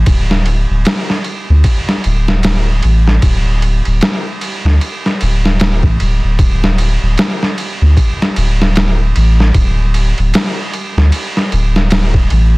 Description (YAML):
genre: trip hop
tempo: 76 BPM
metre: 4/4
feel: swing 59% on 16ths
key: unclear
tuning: A4 = 439 Hz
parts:
  - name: warm sub bass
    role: bass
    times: 0.0-12.6 s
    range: D1 to D2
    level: -11 LUFS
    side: equal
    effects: none
  - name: trip hop sampler-style drum kit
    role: drums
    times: 0.1-12.5 s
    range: kick drum, ride cymbal, snare drum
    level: -14 LUFS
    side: equal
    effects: none
room: little or no reverb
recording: dense, heavily limited modern master, vinyl crackle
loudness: -11 LUFS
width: side -24 dB against mid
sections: 0.0-12.6 A section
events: none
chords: none